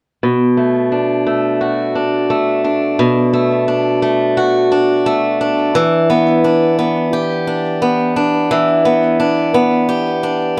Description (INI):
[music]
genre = folktronica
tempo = 87 BPM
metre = 4/4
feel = straight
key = B minor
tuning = A4 = 440 Hz
[part]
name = picked swing-style acoustic guitar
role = arpeggios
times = 0.2-10.6 s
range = B2 to G4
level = -15 LUFS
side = equal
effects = low-pass filter
[sound]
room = moderate studio reverb, RT60 0.6 s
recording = none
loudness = -15 LUFS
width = mono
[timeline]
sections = 0.2-10.6 A section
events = none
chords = 0.2 Bm7; 5.8 Em7